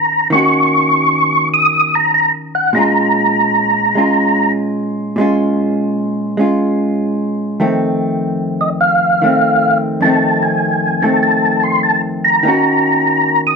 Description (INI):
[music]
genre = jazz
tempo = 99 BPM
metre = 4/4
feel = swing 67% on 8ths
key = Bb minor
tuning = A4 = 441 Hz
[part]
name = percussive tonewheel organ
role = melody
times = 0.0-4.5, 8.6-13.6 s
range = Eb5 to Eb6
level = -12 LUFS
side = equal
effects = slow rotary speaker, chorus vibrato
[part]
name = vintage hollow-body jazz guitar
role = accompaniment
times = 0.0-13.6 s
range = F2 to Gb4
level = -16 LUFS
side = equal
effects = none
[sound]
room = moderate studio reverb, RT60 0.5 s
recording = dark, warm production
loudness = -12 LUFS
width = side -4 dB against mid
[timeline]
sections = 0.0-13.6 A section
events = none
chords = 0.0 Ebm7; 2.7 Bbm7; 7.6 F7; 12.4 Ebm7